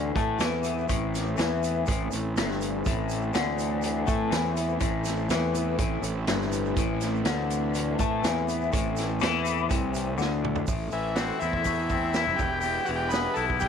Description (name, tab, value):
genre	psychedelic rock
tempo	123 BPM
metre	4/4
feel	straight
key	A minor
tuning	A4 = 440 Hz
part	string machine, violas	sustained chords	0.0-13.7 s	A3 to E5	-37 LUFS	right 12 dB	ensemble chorus
part	twangy electric guitar	riff	0.0-13.7 s	E2 to E4	-29 LUFS	left 11 dB	flanger
part	fuzz fingered electric bass	bass	0.0-13.7 s	E1 to A2	-30 LUFS	right 2 dB	overdrive
part	hand-pumped harmonium	drone	0.0-10.7 s	A2 to E3	-36 LUFS	left 1 dB	none
part	vintage drum kit	drums	0.2-13.7 s	hi-hat, kick drum, snare drum, toms	-30 LUFS	right 2 dB	none
part	tube shaker	percussion	0.4-13.7 s	none	-43 LUFS	right 19 dB	none
part	combo organ	melody	10.9-13.7 s	E4 to B4	-30 LUFS	right 2 dB	tape echo
room	light reverb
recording	1960s-style stereo with parts hard left and right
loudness	-24 LUFS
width	side -7 dB against mid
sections	0.0-10.7 A section; 10.7-13.7 B section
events	drum fill 10.2-10.7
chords	0.0 Am; 12.4 Em